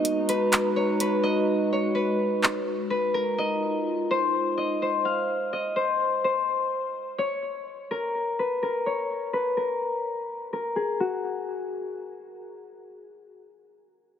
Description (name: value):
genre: hip hop, atmospheric cloud-rap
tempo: 126 BPM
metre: 4/4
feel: half-time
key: unclear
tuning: A4 = 440 Hz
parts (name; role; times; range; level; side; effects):
- Celtic harp; melody; 0.0-13.4 s; F#4 to F5; -26 LUFS; left 2 dB; low-pass filter, tape echo
- warbly tape-like pad; sustained chords; 0.0-5.3 s; G#3 to A#5; -27 LUFS; right 1 dB; chorus, built-in reverb, low-pass filter
- trap drum kit; drums; 0.1-2.5 s; handclaps, hi-hat; -24 LUFS; equal; none
room: moderate huge ambient reverb, RT60 4.2 s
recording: none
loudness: -24 LUFS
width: side -8 dB against mid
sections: 0.0-11.0 A section; 11.0-14.2 B section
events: break 0.0-3.4; filter sweep 0.0-11.0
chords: 0.0 G#m9; 3.4 Fm7; 7.2 N.C.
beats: 0.05 0.53 1.00 | 1.48 1.95 2.43 2.91 | 3.38 3.86 4.33 4.81 | 5.29 5.76 6.24 6.72 | 7.19 7.67 8.14 8.62 | 9.10 9.57 10.05 10.53 | 11.00 11.48 11.95 12.43 | 12.91 13.38